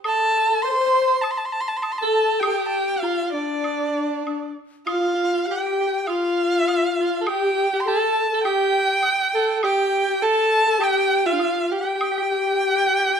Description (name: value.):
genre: chinese traditional, Chinese chamber ensemble.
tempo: 101 BPM.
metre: 4/4.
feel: rubato.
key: G shang mode.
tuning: A4 = 438 Hz.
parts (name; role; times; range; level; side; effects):
bright soprano saxophone; second line; 0.0-13.2 s; D4 to C5; -25 LUFS; right 6 dB; none.
woodblock; percussion; 0.0-12.1 s; none; -31 LUFS; right 1 dB; none.
clear erhu; melody; 0.1-13.2 s; D5 to C6; -22 LUFS; right 1 dB; none.
low xiao; second line; 0.1-13.2 s; D4 to C5; -24 LUFS; left 5 dB; none.
room: moderate recital hall reverb, RT60 1.5 s.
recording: minimal, uncompressed stereo recording.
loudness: -19 LUFS.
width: side -7 dB against mid.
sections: 0.0-13.2 A section.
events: none.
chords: none.